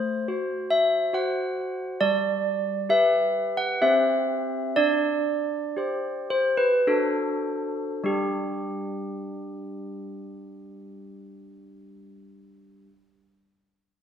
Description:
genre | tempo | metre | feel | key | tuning
classical, tune for handbells | 50-70 BPM | 3/4 | straight | G major | A4 = 442 Hz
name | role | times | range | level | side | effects
handbells | solo | 0.0-12.9 s | G3 to F#5 | -23 LUFS | equal | none
room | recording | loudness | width
wet recital hall reverb, RT60 1.7 s | recorded in a church or concert hall | -22 LUFS | side -8 dB against mid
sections
0.0-8.0 A section; 8.0-11.5 B section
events
slowing down 0.7-8.0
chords
0.0 F#dim/A; 2.0 G; 3.8 C; 4.8 D7sus4; 6.8 D7; 8.0 G5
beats
0.28 1.14 | 2.01 2.90 3.81 | 4.77 5.77 6.85 | 8.02 9.19 10.37

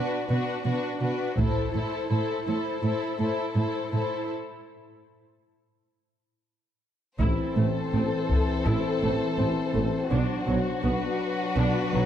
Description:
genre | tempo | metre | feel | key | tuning
cinematic, epic orchestral film score | 82 BPM | 4/4 | straight | A dorian | A4 = 440 Hz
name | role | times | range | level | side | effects
rich symphonic violin section | melody | 0.0-12.1 s | B4 to C5 | -34 LUFS | left 7 dB | none
warm symphonic violin section | second line | 0.0-12.1 s | F#4 to A4 | -32 LUFS | left 2 dB | none
warm symphonic viola section | accompaniment | 0.0-12.0 s | F#3 to E4 | -33 LUFS | right 1 dB | none
dark symphonic cello section | bass | 0.3-12.0 s | A2 to B2 | -30 LUFS | right 2 dB | none
warm symphonic double bass section | bass | 1.4-1.7, 7.2-12.0 s | A1 to B1 | -29 LUFS | right 2 dB | none
taiko ensemble | drums | 1.4-2.8, 7.2-8.6 s | none | -27 LUFS | left 1 dB | none
warm French horn section | sustained chords | 7.2-12.1 s | E3 to D4 | -30 LUFS | left 2 dB | none
mellow tuba | bass | 7.2-12.1 s | A1 to B1 | -32 LUFS | right 2 dB | none
room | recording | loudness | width
moderate concert hall reverb, RT60 2.1 s | dark, warm production | -24 LUFS | side -10 dB against mid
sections
0.0-7.2 A section; 7.2-12.1 A section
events
break 4.3-7.2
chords
0.0 Bm; 1.4 Am; 4.3 N.C.; 7.2 Am; 10.1 Bm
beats
0.66 | 1.38 2.11 2.84 3.57 | 4.29 5.02 5.75 6.48 | 7.20 7.93 8.66 9.38 | 10.11 10.84 11.57

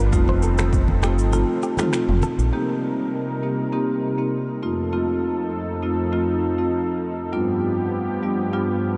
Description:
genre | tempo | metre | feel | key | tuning
afrobeats | 100 BPM | 4/4 | straight | C dorian | A4 = 444 Hz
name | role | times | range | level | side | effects
warm analog pad | sustained chords | 0.0-9.0 s | F2 to B4 | -29 LUFS | equal | chorus
direct-recorded clean electric guitar | riff | 0.0-2.3 s | G4 to C5 | -36 LUFS | equal | none
deep dub fingered electric bass | bass | 0.0-2.5 s | F1 to Bb1 | -23 LUFS | equal | none
marimba with medium mallets | accompaniment | 0.1-8.9 s | G3 to G4 | -26 LUFS | equal | none
deep house drum kit | drums | 0.1-2.5 s | finger snaps, kick drum, rim click, shaker, toms | -28 LUFS | equal | overdrive
congas | percussion | 0.3-2.4 s | none | -36 LUFS | equal | none
room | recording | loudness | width
wet huge ambient reverb, RT60 9.0 s | dreamy mix soaked in reverb, nothing above 10.3 kHz | -22 LUFS | mono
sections
0.0-2.5 A section; 2.5-9.0 B section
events
kick muted 1.3-2.5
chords
0.1 F7; 2.5 Cm7; 4.6 F7; 7.3 G7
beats
| 0.13 0.73 1.33 1.93 | 2.53 3.13 3.73 4.33 | 4.93 5.53 6.13 6.73 | 7.33 7.93 8.53

